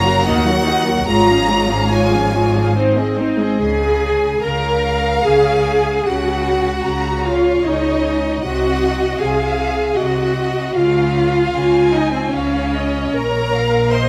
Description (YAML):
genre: classical, slow romantic movement for string orchestra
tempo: 70-80 BPM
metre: 3/4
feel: rubato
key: Db major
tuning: A4 = 445 Hz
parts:
  - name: clear chamber violin section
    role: melody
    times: 0.0-14.1 s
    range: C5 to C6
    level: -26 LUFS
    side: equal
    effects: none
  - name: rich chamber violin section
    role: second line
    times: 0.0-14.1 s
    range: F4 to Bb5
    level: -25 LUFS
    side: equal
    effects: none
  - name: rich studio viola section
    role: accompaniment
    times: 0.0-14.1 s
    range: Eb3 to C5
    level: -19 LUFS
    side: equal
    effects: none
  - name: clear chamber cello section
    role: bass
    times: 0.0-14.1 s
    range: Eb2 to Db3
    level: -26 LUFS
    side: equal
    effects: none
  - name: clear studio double bass section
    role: bass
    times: 0.0-14.1 s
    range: Gb1 to Eb2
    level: -25 LUFS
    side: equal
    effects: none
room: wet recital hall reverb, RT60 1.5 s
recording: none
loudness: -17 LUFS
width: mono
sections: 0.0-3.6 A section; 3.6-14.1 B section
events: none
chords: 0.3 Ebm; 1.1 Db/Ab; 2.8 Ab; 3.6 Db; 8.4 Ab/C; 10.8 Db; 13.1 Bbm